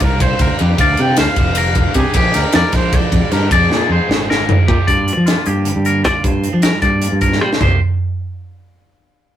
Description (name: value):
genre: math rock and midwest emo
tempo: 308 BPM (eighths)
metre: 7/8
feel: straight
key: unclear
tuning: A4 = 440 Hz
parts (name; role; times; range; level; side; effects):
- warm trumpet; melody; 0.0-4.5 s; Ab4 to G5; -22 LUFS; right 1 dB; none
- twangy electric guitar; arpeggios; 0.0-7.8 s; F4 to D5; -19 LUFS; left 2 dB; none
- biting overdriven guitar; riff; 0.0-4.9 s; G2 to D4; -24 LUFS; right 2 dB; none
- modern bright fingered electric bass; bass; 0.0-7.8 s; F1 to G3; -17 LUFS; equal; none
- crisp fusion drum kit; drums; 0.0-7.7 s; china cymbal, hi-hat, kick drum, ride cymbal, snare drum, toms; -16 LUFS; equal; none
- clean electric guitar; accompaniment; 4.9-7.8 s; G2 to G4; -26 LUFS; right 5 dB; tremolo
room: moderate studio reverb, RT60 0.6 s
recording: rough rehearsal-room recording, warm saturation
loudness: -12 LUFS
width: side -11 dB against mid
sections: 0.0-4.9 A section; 4.9-7.6 B section; 7.6-9.0 C section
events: drum fill 3.7-4.9, 7.3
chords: 0.0 Gm7; 2.2 Bb7; 4.9 Gm7; 7.6 Cm7